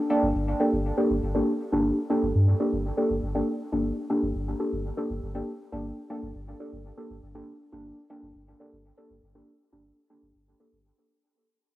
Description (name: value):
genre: dub techno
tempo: 120 BPM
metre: 4/4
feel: straight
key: G minor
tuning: A4 = 441 Hz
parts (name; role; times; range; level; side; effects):
- deep mellow chord stab; stabs; 0.1-10.8 s; Bb3 to A4; -26 LUFS; equal; chorus, phaser, cassette tape, dub echo
- warm sub bass; bass; 0.2-10.9 s; G1 to G2; -28 LUFS; equal; none
room: moderate lush hall reverb, RT60 2.2 s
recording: home recording on cassette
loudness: -24 LUFS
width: side -16 dB against mid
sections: 0.0-11.0 A section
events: fade-out 0.0-11.0; filter sweep on synth stab 0.0-11.0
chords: 0.0 Gmadd9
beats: 0.47 | 0.97 1.47 1.97 2.47 | 2.97 3.47 3.97 4.47 | 4.97 5.47 5.97 6.47 | 6.97 7.47 7.97 8.47 | 8.97 9.47 9.97 10.47